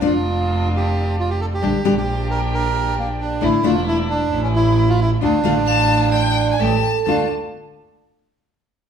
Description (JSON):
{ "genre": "tango", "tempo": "133 BPM", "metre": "4/4", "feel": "rubato", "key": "D harmonic minor", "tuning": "A4 = 445 Hz", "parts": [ { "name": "nylon-string guitar", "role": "accompaniment", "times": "0.0-7.3 s", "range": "D3 to G4", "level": "-20 LUFS", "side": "left 4 dB", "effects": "none" }, { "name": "warm studio string section", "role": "stabs", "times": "0.0-7.2 s", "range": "A3 to G4", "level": "-27 LUFS", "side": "equal", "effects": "none" }, { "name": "clear double bass", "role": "bass", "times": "0.0-7.2 s", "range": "E1 to D2", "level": "-21 LUFS", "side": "right 2 dB", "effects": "none" }, { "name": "bandoneon", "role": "melody", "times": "0.1-7.3 s", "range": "Bb3 to Bb4", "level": "-21 LUFS", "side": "right 2 dB", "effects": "none" }, { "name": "vibraphone with hard mallets", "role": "second line", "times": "5.7-7.3 s", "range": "A4 to F5", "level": "-24 LUFS", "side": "right 9 dB", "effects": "none" }, { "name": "warm violin", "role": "second line", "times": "5.7-7.3 s", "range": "G5 to A5", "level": "-21 LUFS", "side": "left 4 dB", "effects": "none" } ], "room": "moderate large studio reverb, RT60 1.1 s", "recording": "band playing live in one room", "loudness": "-16 LUFS", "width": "side -8 dB against mid", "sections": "0.0-7.1 A section; 7.1-8.9 B section", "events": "none", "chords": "0.0 Bb; 1.6 Gm/Bb; 3.4 Asus4; 4.3 A; 5.2 Dm; 6.6 A7; 7.1 Dm" }